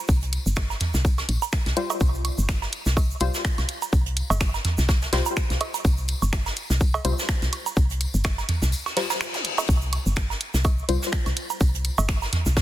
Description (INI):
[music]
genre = minimal techno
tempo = 125 BPM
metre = 4/4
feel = swing 56% on 16ths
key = unclear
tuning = A4 = 437 Hz
[part]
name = woody FM bass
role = bass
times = 0.1-12.6 s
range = G1 to C2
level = -25 LUFS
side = equal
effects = sidechain pumping
[part]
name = electronic kick drum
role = drums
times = 0.1-12.6 s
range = none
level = -22 LUFS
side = equal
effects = none
[part]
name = soft brush drum kit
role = drums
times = 0.1-12.6 s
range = hi-hat, snare drum, tambourine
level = -33 LUFS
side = right 1 dB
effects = sidechain pumping on hats, high-pass filter on hats, soft clipping on snare, high-pass filter on snare, sidechain pumping on perc, high-pass filter on perc, high-pass filter on room
[part]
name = egg shaker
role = percussion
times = 0.1-12.6 s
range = none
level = -37 LUFS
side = right 3 dB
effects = none
[part]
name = garage drum kit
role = drums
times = 0.3-12.4 s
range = finger snaps, hi-hat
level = -32 LUFS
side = equal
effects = soft clipping on snare
[part]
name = electronic cowbell, woodblock and toms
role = percussion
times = 0.6-12.6 s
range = none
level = -28 LUFS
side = right 4 dB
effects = digital delay
[part]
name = filtered dub chord stab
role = stabs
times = 1.8-11.0 s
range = G3 to C5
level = -30 LUFS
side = left 4 dB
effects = chorus, digital delay
[part]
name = reverse cymbal and zap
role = sound effects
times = 8.9-9.7 s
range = none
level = -32 LUFS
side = left 4 dB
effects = none
[sound]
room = studio reverb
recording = dense, heavily limited modern master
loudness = -21 LUFS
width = side -14 dB against mid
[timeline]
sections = 0.0-12.6 A section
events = reverse cymbal 8.9-9.7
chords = 0.0 C5